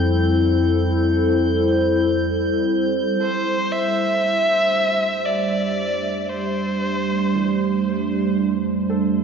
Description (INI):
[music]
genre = ambient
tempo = 58 BPM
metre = 3/4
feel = straight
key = F major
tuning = A4 = 440 Hz
[part]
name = warbly tape-like pad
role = sustained chords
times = 0.0-9.2 s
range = G3 to C5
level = -20 LUFS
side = right 1 dB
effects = chorus, built-in reverb
[part]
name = deep rumbling drone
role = bass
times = 0.0-9.2 s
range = F2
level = -26 LUFS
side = equal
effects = built-in reverb, tube saturation
[part]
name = drifting glass-harmonics texture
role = texture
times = 0.0-3.2 s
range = G6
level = -34 LUFS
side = right 1 dB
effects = chorus, built-in reverb
[part]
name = rich electric violin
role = melody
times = 3.2-7.8 s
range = C5 to E5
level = -22 LUFS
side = equal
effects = tape echo
[part]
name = felt-muted upright piano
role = arpeggios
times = 3.2-9.2 s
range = E3 to A4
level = -40 LUFS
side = equal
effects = none
[sound]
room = wet cathedral reverb, RT60 5.1 s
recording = in a vast, echoing space, nothing above 7.5 kHz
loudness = -18 LUFS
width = side -6 dB against mid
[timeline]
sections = 0.0-3.2 A section; 3.2-9.2 B section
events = fade-in on synth drone 3.2-9.2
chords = 0.0 F69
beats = | 0.10 1.13 2.17 | 3.20 4.24 5.27 | 6.31 7.34 8.38